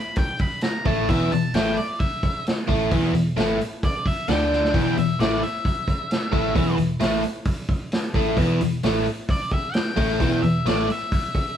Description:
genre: blues rock power trio and southern rock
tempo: 132 BPM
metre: 4/4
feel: straight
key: E minor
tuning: A4 = 440 Hz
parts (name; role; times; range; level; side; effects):
- octave-fuzz lead guitar; melody; 0.0-11.6 s; D5 to B5; -28 LUFS; left 1 dB; distortion
- vintage drum kit; drums; 0.2-11.5 s; hi-hat, kick drum, snare drum; -24 LUFS; equal; none
- biting overdriven guitar; riff; 0.9-10.9 s; E2 to D4; -22 LUFS; left 1 dB; none
- vintage muted picked electric bass; bass; 0.9-10.9 s; E1 to D2; -27 LUFS; equal; none
room: light reverb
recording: band playing live in one room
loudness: -20 LUFS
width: side -9 dB against mid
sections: 0.0-11.6 A section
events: drum fill 4.5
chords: none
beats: 0.18 0.63 | 1.09 1.54 2.00 2.45 | 2.91 3.37 3.82 4.28 | 4.73 5.19 5.64 6.10 | 6.55 7.01 7.46 7.92 | 8.38 8.83 9.29 9.74 | 10.20 10.66 11.12 11.57

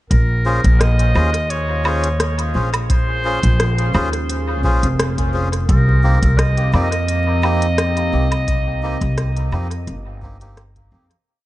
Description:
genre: ambient dub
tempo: 86 BPM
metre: 4/4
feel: swing 54% on 16ths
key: Bb dorian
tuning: A4 = 438 Hz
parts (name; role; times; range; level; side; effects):
- bright clarinet; melody; 0.1-10.5 s; Bb4 to Eb5; -24 LUFS; right 1 dB; dub echo
- deep dark ambient pad; sustained chords; 2.7-11.3 s; Bb3 to Bb5; -30 LUFS; equal; chorus, built-in reverb, vintage 12-bit sampler grit
- upright bass; bass; 0.1-11.1 s; F1 to F2; -17 LUFS; equal; none
- electronic kick drum; drums; 0.1-10.9 s; none; -20 LUFS; equal; studio reverb
- organic electronic drum kit; drums; 0.1-11.2 s; hi-hat, rim click, woodblock; -25 LUFS; equal; studio reverb, dub echo
- melodica; stabs; 0.5-11.1 s; Bb3 to C5; -25 LUFS; left 1 dB; dub echo
room: light reverb, small room ambience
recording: echo-heavy mix, vinyl crackle, nothing above 10.5 kHz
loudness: -15 LUFS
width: side -16 dB against mid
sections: 0.1-11.3 groove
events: fade-in on ambient pad 0.1-11.3; fade-out 7.5-11.3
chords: 0.1 Bbm9; 5.7 Cm7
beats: | 0.11 0.81 1.50 2.20 | 2.90 3.60 4.29 4.99 | 5.69 6.39 7.08 7.78 | 8.48 9.18 9.88 10.57

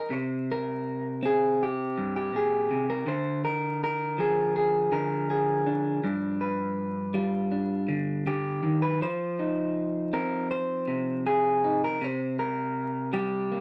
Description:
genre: folk, solo fingerstyle acoustic guitar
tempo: 80 BPM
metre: 4/4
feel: straight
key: C minor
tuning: A4 = 440 Hz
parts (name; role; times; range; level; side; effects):
- electric guitar through a small old amp; solo; 0.0-13.6 s; G2 to C5; -28 LUFS; equal; none
room: light reverb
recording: tube saturation, vinyl crackle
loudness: -28 LUFS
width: mono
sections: 0.1-13.6 A section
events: none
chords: 0.1 C5; 3.1 Ddim; 6.0 G7; 9.0 F5; 12.0 C7(no3)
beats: | 0.11 0.86 1.61 2.35 | 3.09 3.83 4.56 5.30 | 6.04 6.78 7.52 8.26 | 9.01 9.75 10.50 11.26 | 12.01 12.76 13.51

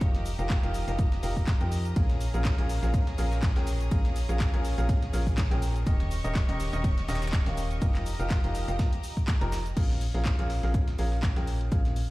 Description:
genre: piano house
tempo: 123 BPM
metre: 4/4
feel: swing 55% on 16ths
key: Bb dorian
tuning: A4 = 440 Hz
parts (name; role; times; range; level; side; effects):
- clear studio violin section; sustained chords; 0.0-9.7 s; G4 to Db6; -41 LUFS; equal; sidechain pumping
- clear upright piano; riff; 0.0-12.0 s; Bb2 to Bb5; -34 LUFS; equal; vintage 12-bit sampler grit, sidechain pumping, digital delay
- organ-like FM bass; bass; 0.0-12.1 s; Eb1 to F2; -29 LUFS; equal; sidechain pumping
- breakbeat sampler-style drum kit; drums; 0.0-12.1 s; hi-hat, shaker, snare drum; -46 LUFS; equal; overdrive, sidechain pumping on perc, high-pass filter on perc, high-pass filter on snare, sidechain pumping on hats, high-pass filter on hats, high-pass filter on room
- electronic kick drum; drums; 0.0-11.8 s; none; -26 LUFS; equal; overdrive
- house drum kit; drums; 0.0-12.1 s; crash cymbal, handclaps, hi-hat, ride cymbal, shaker; -40 LUFS; left 1 dB; overdrive
room: little or no reverb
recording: played on a big sound system in a bare room, stone room reverb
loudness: -25 LUFS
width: side -19 dB against mid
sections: 0.0-9.8 A section; 9.8-12.1 B section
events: drop 0.0-9.8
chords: 0.0 F9sus4; 2.0 Bbm7; 5.9 Eb7; 7.8 F9sus4; 9.8 Bbm7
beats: | 0.01 0.50 0.99 1.48 | 1.96 2.45 2.94 3.43 | 3.91 4.40 4.89 5.38 | 5.87 6.35 6.84 7.33 | 7.82 8.30 8.79 9.28 | 9.77 10.26 10.74 11.23 | 11.72

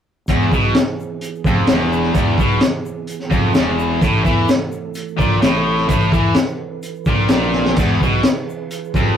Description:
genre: psychedelic rock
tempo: 128 BPM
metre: 4/4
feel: straight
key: unclear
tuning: A4 = 442 Hz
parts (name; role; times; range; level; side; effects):
- percussive tonewheel organ; sustained chords; 0.3-9.2 s; E3 to B4; -27 LUFS; right 7 dB; chorus vibrato, slow rotary speaker
- overdriven electric guitar; riff; 0.3-9.2 s; E2 to E3; -18 LUFS; equal; none
- fuzz fingered electric bass; bass; 0.3-9.2 s; E1 to E2; -23 LUFS; equal; overdrive
- crunchy breakbeat drum kit; drums; 0.3-9.0 s; crash cymbal, hi-hat, kick drum, snare drum; -17 LUFS; left 1 dB; none
- tube shaker; percussion; 0.3-9.1 s; none; -44 LUFS; left 6 dB; none
room: light reverb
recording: rough rehearsal-room recording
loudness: -14 LUFS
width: side -9 dB against mid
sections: 0.3-9.2 A section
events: drum fill 7.5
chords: 0.3 E; 4.0 A5; 7.8 E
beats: | 0.29 0.76 1.22 1.69 | 2.16 2.63 3.10 3.56 | 4.03 4.50 4.97 5.43 | 5.90 6.37 6.84 7.30 | 7.77 8.24 8.71

